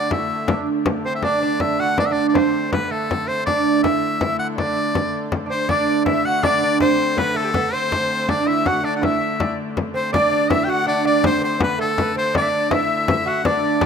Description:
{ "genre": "medieval dance", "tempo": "108 BPM (dotted quarters)", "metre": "6/8", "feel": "straight", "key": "D mixolydian", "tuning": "A4 = 440 Hz", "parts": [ { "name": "edgy shawm", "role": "melody", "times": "0.0-13.9 s", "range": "A4 to G5", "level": "-22 LUFS", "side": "left 2 dB", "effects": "none" }, { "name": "lute", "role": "second line", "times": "0.0-13.9 s", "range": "A3 to F#4", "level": "-21 LUFS", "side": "right 5 dB", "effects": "none" }, { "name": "rich hurdy-gurdy", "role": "drone", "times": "0.0-13.9 s", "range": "D3 to A3", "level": "-29 LUFS", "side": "left 2 dB", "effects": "none" }, { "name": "frame drum", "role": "percussion", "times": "0.1-13.9 s", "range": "none", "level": "-24 LUFS", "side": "left 4 dB", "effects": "none" }, { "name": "bright alto recorder", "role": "second line", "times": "5.5-13.9 s", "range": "G4 to F#5", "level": "-25 LUFS", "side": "left 6 dB", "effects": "none" } ], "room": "moderate lush hall reverb, RT60 2.8 s", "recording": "rough home demo mix", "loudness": "-17 LUFS", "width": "side -6 dB against mid", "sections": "0.0-5.7 A section; 5.7-13.9 A section", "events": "none", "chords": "none" }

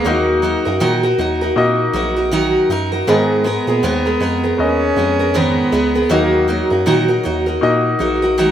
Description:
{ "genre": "acoustic pop", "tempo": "79 BPM", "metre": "4/4", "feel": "swing 60% on 16ths", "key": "Eb minor", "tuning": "A4 = 445 Hz", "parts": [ { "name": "warm cello", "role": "melody", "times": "0.0-8.5 s", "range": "Gb3 to Db4", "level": "-21 LUFS", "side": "left 1 dB", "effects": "none" }, { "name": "clear baby grand piano", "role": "accompaniment", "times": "0.0-8.5 s", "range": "Bb3 to Eb5", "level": "-21 LUFS", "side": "left 3 dB", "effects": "none" }, { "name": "picked steel-string acoustic guitar", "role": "accompaniment", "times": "0.0-8.5 s", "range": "Ab2 to Bb4", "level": "-16 LUFS", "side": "right 1 dB", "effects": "none" }, { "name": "bell-like tine electric piano", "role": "bass", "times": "0.0-8.5 s", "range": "Bb1 to Bb2", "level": "-22 LUFS", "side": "equal", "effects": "none" } ], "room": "moderate plate reverb, RT60 3.2 s", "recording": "rough home demo mix", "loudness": "-13 LUFS", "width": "side -10 dB against mid", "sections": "0.0-8.5 A section", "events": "none", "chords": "0.1 Ebm; 3.1 Abmadd9; 6.1 Ebm" }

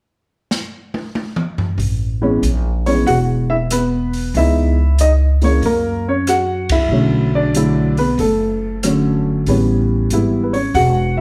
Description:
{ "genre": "jazz piano trio", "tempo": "94 BPM", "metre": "4/4", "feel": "swing 67% on 8ths", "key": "A major", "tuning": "A4 = 440 Hz", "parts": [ { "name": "open jazz drum kit", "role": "drums", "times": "0.5-10.9 s", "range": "hi-hat, kick drum, ride cymbal, rim click, snare drum, toms", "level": "-26 LUFS", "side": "equal", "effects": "none" }, { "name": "upright bass", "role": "bass", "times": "1.8-11.2 s", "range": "E1 to F#2", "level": "-20 LUFS", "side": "equal", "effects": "none" }, { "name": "dark baby grand piano", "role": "melody", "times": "2.2-11.2 s", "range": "D3 to F#5", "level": "-18 LUFS", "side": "equal", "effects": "none" } ], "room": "moderate large studio reverb, RT60 1.1 s", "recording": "heard from further back in the room", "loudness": "-17 LUFS", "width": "mono", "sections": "0.0-1.8 A section; 1.8-11.2 B section", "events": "drum fill 0.5-1.8; band accent 6.6-6.9", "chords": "0.0 N.C.; 1.8 Amaj7; 4.4 C#m7; 5.6 F#7; 6.9 Bm9; 9.5 A9" }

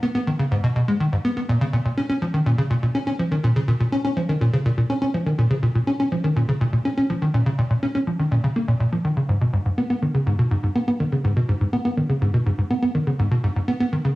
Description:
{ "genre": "ambient", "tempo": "123 BPM", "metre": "4/4", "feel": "straight", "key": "G# dorian", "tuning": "A4 = 440 Hz", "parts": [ { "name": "tight sequencer bass", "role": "solo", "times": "0.0-14.1 s", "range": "G#2 to C#4", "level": "-19 LUFS", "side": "equal", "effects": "lush chorus, cassette tape, tape echo" } ], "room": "wet studio reverb, RT60 0.7 s", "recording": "home recording on cassette", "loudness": "-19 LUFS", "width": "side -18 dB against mid", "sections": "0.0-9.3 A section; 9.3-14.2 B section", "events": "none", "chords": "none" }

